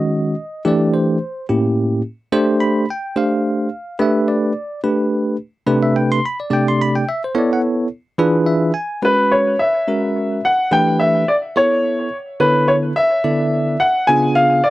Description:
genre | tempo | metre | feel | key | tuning
jazz | 72 BPM (dotted quarters) | 6/8 | straight | unclear | A4 = 440 Hz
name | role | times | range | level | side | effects
bell-like tine electric piano | accompaniment | 0.0-14.6 s | A2 to C6 | -16 LUFS | equal | fast stereo tremolo
clear grand piano | melody | 9.0-14.7 s | B4 to G#5 | -15 LUFS | left 1 dB | none
room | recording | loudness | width
little or no reverb | dry, close 1970s-style studio recording | -15 LUFS | side -17 dB against mid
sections
0.0-9.0 A section; 9.0-14.7 B section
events
tine electric piano fill 8.2-9.0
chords
0.0 F#sus2; 0.7 C69/E; 1.5 A7b9; 2.3 Dm7; 4.0 Gadd9; 5.7 Csus2; 7.4 Bm11; 8.2 E7b9; 9.0 C#m7; 10.7 Em7; 11.6 A; 12.4 Dsus2; 14.1 C#7b9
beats
| 0.66 1.50 | 2.33 3.17 | 4.01 4.84 | 5.68 6.52 | 7.36 8.20 | 9.04 9.88 | 10.72 11.56 | 12.40 13.24 | 14.08

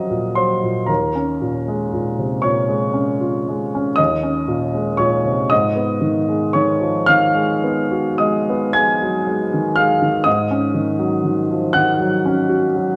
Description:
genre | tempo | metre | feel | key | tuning
classical, impressionist solo piano | 34-41 BPM (dotted quarters) | 9/8 | rubato | unclear | A4 = 445 Hz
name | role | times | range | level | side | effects
clear grand piano | solo | 0.0-13.0 s | Eb2 to Ab6 | -18 LUFS | equal | none
room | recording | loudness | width
moderate scoring stage reverb, RT60 1.9 s | none | -18 LUFS | mono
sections
0.0-13.0 A section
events
none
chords
0.0 Ebm9; 0.9 Bbm7/Eb; 4.0 Eb7sus4; 5.5 Abm7; 10.3 Ab7sus4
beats
| 0.89 2.44 3.99 | 5.51 7.08 8.76 | 10.26 11.76

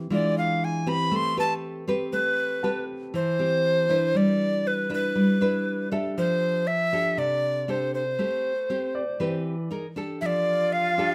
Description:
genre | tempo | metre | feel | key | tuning
bossa nova | 119 BPM | 4/4 | straight | A minor | A4 = 440 Hz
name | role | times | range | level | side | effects
nylon-string guitar | accompaniment | 0.0-11.1 s | C3 to B4 | -29 LUFS | equal | none
breathy tenor recorder | melody | 0.1-11.1 s | B4 to C6 | -27 LUFS | equal | none
warm grand piano | accompaniment | 2.6-11.1 s | G4 to A5 | -39 LUFS | equal | none
breathy jazz flute | second line | 10.2-11.1 s | F4 | -33 LUFS | equal | none
room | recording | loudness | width
light reverb | none | -25 LUFS | mono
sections
0.0-2.1 A section; 2.1-11.1 B section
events
recorder solo 0.0-2.1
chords
0.1 E7b9; 1.1 Am9; 4.1 Em7/G; 6.2 F69; 8.2 Am9; 9.7 D#maj7#11; 10.2 F69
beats
| 0.10 0.61 1.11 1.62 | 2.12 2.63 3.13 3.64 | 4.15 4.65 5.16 5.66 | 6.17 6.67 7.18 7.68 | 8.19 8.70 9.20 9.71 | 10.21 10.72

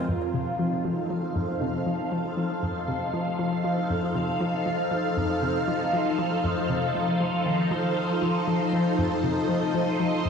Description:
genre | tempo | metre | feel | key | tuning
ambient | 118 BPM | 4/4 | straight | unclear | A4 = 439 Hz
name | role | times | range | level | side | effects
phased string machine | sustained chords | 0.0-10.3 s | F3 to F5 | -25 LUFS | equal | ensemble chorus, phaser
concert harp | arpeggios | 0.0-10.3 s | Ab3 to C5 | -44 LUFS | equal | none
bubbling stepped-filter texture | texture | 0.0-10.3 s | none | barely audible | none | none
hollow square pluck | riff | 0.1-10.3 s | F2 to F3 | -29 LUFS | left 1 dB | chorus, phaser, analog delay
room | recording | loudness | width
wet huge ambient reverb, RT60 8.6 s | played on a big sound system in a bare room, large studio reverb | -24 LUFS | side -6 dB against mid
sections
0.1-10.3 A section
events
none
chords
0.1 F7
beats
| 0.09 0.59 1.10 1.61 | 2.12 2.63 3.13 3.64 | 4.15 4.66 5.17 5.68 | 6.19 6.70 7.20 7.71 | 8.22 8.73 9.24 9.75 | 10.25

